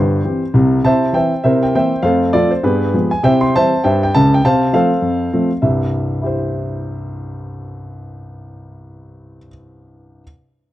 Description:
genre	jazz, stride piano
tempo	201 BPM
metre	4/4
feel	swing 60% on 8ths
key	C major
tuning	A4 = 441 Hz
part	warm grand piano	solo	0.0-10.2 s	G1 to C6	-14 LUFS	equal	none
room	little or no reverb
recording	dry, close 1970s-style studio recording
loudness	-13 LUFS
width	side -14 dB against mid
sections	0.9-5.6 A section; 5.6-8.0 B section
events	none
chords	0.0 C; 1.4 C7; 2.0 F; 2.6 G7b9; 3.2 C; 4.4 F/C; 5.6 C

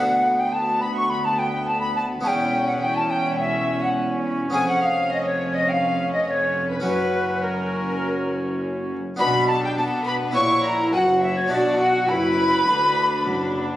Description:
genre	classical, baroque-style concerto movement with solo episodes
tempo	104 BPM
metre	4/4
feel	straight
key	B minor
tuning	A4 = 440 Hz
part	bright wooden flute	melody	0.0-13.7 s	A#4 to C#6	-22 LUFS	equal	none
part	rich studio violin section	melody	0.0-13.6 s	F#4 to C#6	-34 LUFS	left 3 dB	none
part	rich chamber violin section	second line	0.0-13.7 s	C#4 to C#6	-30 LUFS	left 2 dB	none
part	dark chamber viola section	accompaniment	0.0-13.8 s	B3 to F#4	-26 LUFS	equal	none
part	harpsichord	accompaniment	0.0-13.8 s	D2 to B4	-30 LUFS	left 1 dB	none
part	dark chamber cello section	bass	0.0-13.8 s	D2 to B3	-30 LUFS	right 1 dB	none
part	rich chamber double bass section	bass	0.0-13.8 s	E1 to B2	-32 LUFS	equal	none
room	wet recital hall reverb, RT60 1.5 s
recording	recorded on a phone in the room, club reverb, compression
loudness	-19 LUFS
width	side -14 dB against mid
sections	0.0-9.2 A section; 9.2-13.8 B section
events	none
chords	0.0 Bm/D; 2.2 Em6; 4.5 C#7/E#; 6.9 F#; 9.2 Bm; 10.4 F#7/A#; 11.5 Bm

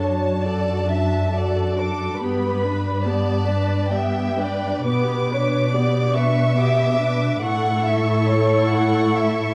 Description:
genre	classical, slow romantic movement for string orchestra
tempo	69 BPM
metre	3/4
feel	rubato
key	unclear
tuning	A4 = 440 Hz
part	warm symphonic violin section	melody	0.0-9.5 s	G5 to D6	-31 LUFS	equal	none
part	rich chamber violin section	second line	0.0-9.5 s	A4 to F#5	-26 LUFS	equal	none
part	rich chamber viola section	accompaniment	0.0-9.5 s	B3 to B4	-27 LUFS	equal	none
part	warm chamber cello section	bass	0.0-9.5 s	F#2 to B2	-24 LUFS	equal	none
room	moderate scoring stage reverb, RT60 1.9 s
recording	dark, warm production, vinyl crackle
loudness	-21 LUFS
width	mono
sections	0.0-9.5 A section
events	none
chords	0.0 D/F#; 2.2 G; 4.9 G/B; 7.4 A

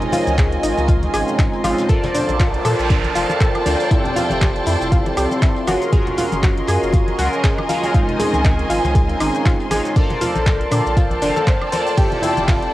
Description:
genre	deep house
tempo	119 BPM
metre	4/4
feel	swing 57% on 16ths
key	unclear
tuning	A4 = 440 Hz
part	chorused polysynth	stabs	0.0-12.7 s	Ab3 to F5	-22 LUFS	equal	phaser, sidechain pumping, cassette tape, analog delay
part	deep house drum kit	drums	0.0-12.7 s	handclaps, hi-hat, ride cymbal, shaker, woodblock	-28 LUFS	equal	small room reverb
part	congas	percussion	0.0-12.6 s	none	-29 LUFS	left 2 dB	none
part	dark studio string section	texture	0.0-12.7 s	Bb4 to C6	-23 LUFS	equal	sidechain pumping, cassette tape
part	analog pluck	arpeggios	0.1-12.6 s	D4 to C5	-24 LUFS	left 1 dB	chorus, sidechain pumping, cassette tape, analog delay
part	open jazz drum kit	drums	0.1-12.6 s	hi-hat, snare drum	-39 LUFS	left 2 dB	none
part	round analog bass	bass	0.3-12.7 s	F1 to Bb2	-23 LUFS	equal	none
part	electronic kick drum	drums	0.4-12.6 s	none	-16 LUFS	equal	small room reverb
part	noise sweep	sound effects	2.2-3.9 s	none	-29 LUFS	right 3 dB	none
room	light reverb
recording	home recording on cassette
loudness	-15 LUFS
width	side -16 dB against mid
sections	0.0-12.7 A section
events	noise sweep 2.2-3.9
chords	0.0 Dbmaj9; 1.9 Bbmaj9; 3.9 Fmaj9; 5.7 Gbmaj9; 7.9 Dbmaj9; 10.0 Bbmaj9; 12.0 Fmaj9

